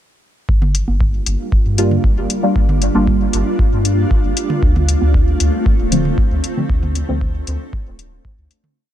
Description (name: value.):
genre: dub techno.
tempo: 116 BPM.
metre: 4/4.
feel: straight.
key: G minor.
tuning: A4 = 440 Hz.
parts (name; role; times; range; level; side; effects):
granular cloud pad; sustained chords; 1.2-8.7 s; G3 to F4; -22 LUFS; equal; built-in reverb, sidechain pumping.
soft dub sub bass; bass; 0.5-8.5 s; D1 to G2; -18 LUFS; equal; sidechain pumping.
electronic kick drum; drums; 0.5-8.4 s; none; -16 LUFS; equal; none.
electronic toms and congas; percussion; 0.6-8.7 s; none; -26 LUFS; right 3 dB; sidechain pumping on toms, sidechain pumping on perc, dub echo.
electronic hi-hat; drums; 0.7-8.6 s; none; -22 LUFS; left 7 dB; none.
deep mellow chord stab; stabs; 1.8-7.4 s; D3 to F4; -20 LUFS; equal; chorus, phaser, sidechain pumping, dub echo.
room: digital ambience.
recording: none.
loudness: -14 LUFS.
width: side -11 dB against mid.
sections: 0.5-8.8 groove.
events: filter sweep on synth stab 0.5-8.8; fade-out 6.0-8.8.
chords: 0.5 Gm7; 4.6 Dm7.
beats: | 0.49 1.01 1.52 2.04 | 2.56 3.08 3.59 4.11 | 4.63 5.14 5.66 6.18 | 6.70 7.21 7.73 8.25.